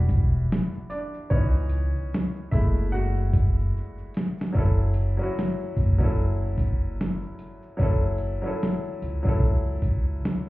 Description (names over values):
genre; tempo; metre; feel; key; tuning
lo-fi hip hop; 74 BPM; 4/4; swing 60% on 16ths; F# minor from 4.5 s; A4 = 440 Hz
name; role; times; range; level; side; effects
bright upright piano; accompaniment; 0.0-10.5 s; E3 to F#5; -31 LUFS; left 1 dB; low-pass filter
upright bass; bass; 0.0-10.2 s; E1 to C#2; -24 LUFS; equal; none
dusty soul sampler-style drum kit; drums; 0.1-10.5 s; hi-hat, kick drum, shaker, snare drum; -24 LUFS; equal; none
room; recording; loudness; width
light reverb; heard muffled through a wall, club reverb, EQ; -22 LUFS; side -18 dB against mid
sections
0.0-4.5 A section; 4.5-10.5 B section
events
upright piano solo 0.0-4.5; drum fill 3.7-4.5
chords
0.0 Em7; 1.3 C#m7; 2.5 F#m7